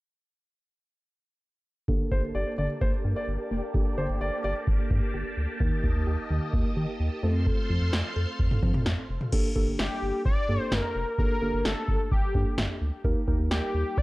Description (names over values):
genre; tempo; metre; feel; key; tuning
synth-pop; 129 BPM; 4/4; straight; G minor; A4 = 440 Hz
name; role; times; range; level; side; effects
muted felt-like synth keys; accompaniment; 1.9-14.0 s; A3 to Bb4; -34 LUFS; right 1 dB; chorus, low-pass filter
phased string machine; sustained chords; 1.9-9.3 s; Bb3 to C6; -36 LUFS; equal; ensemble chorus, phaser, low-pass filter
soft round pluck; arpeggios; 1.9-9.0 s; D3 to A4; -36 LUFS; equal; chorus, low-pass filter, tape echo
round analog bass; bass; 1.9-14.0 s; F1 to F3; -29 LUFS; equal; none
electro analog drum machine; drums; 1.9-14.0 s; crash cymbal, kick drum, snare drum, toms; -27 LUFS; equal; none
warm concert grand piano; second line; 2.1-4.5 s; C5 to D5; -34 LUFS; equal; tape echo
wide unison lead; melody; 9.8-14.0 s; G4 to D5; -31 LUFS; left 2 dB; tape echo
room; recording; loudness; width
light reverb, digital ambience; dry, gritty hardware recording; -25 LUFS; side -20 dB against mid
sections
1.9-9.3 A section; 9.3-14.0 B section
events
filter sweep 1.9-9.3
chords
1.9 Gmadd9; 5.6 Eb; 7.2 F; 9.3 Gmadd9; 13.0 Eb